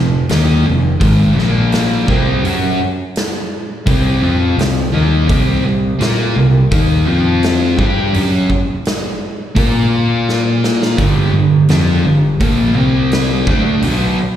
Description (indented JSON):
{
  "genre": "blues rock power trio and southern rock",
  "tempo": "84 BPM",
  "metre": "4/4",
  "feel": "straight",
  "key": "unclear",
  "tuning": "A4 = 439 Hz",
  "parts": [
    { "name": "sludgy distorted guitar", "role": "riff", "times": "0.0-14.2 s", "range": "F2 to Bb4", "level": "-14 LUFS", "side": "equal", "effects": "overdrive, slapback echo" },
    { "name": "vintage muted picked electric bass", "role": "bass", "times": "0.0-14.2 s", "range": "F1 to Bb2", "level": "-17 LUFS", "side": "equal", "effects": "none" },
    { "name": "big rock drum kit", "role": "drums", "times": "0.3-14.0 s", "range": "hi-hat, kick drum, snare drum", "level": "-19 LUFS", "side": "equal", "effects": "none" }
  ],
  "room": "light reverb, small room ambience",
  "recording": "live gig heard through the venue's PA, recital hall reverb",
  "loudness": "-12 LUFS",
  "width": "side -10 dB against mid",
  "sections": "0.0-14.4 A section",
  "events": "drum fill 10.3-11.0",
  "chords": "0.0 F5; 1.4 Bb5; 2.1 C5; 7.1 F5; 7.8 Dadd11/F#; 9.6 Bb5; 11.0 G5; 12.8 C5; 13.5 D5; 13.8 N.C."
}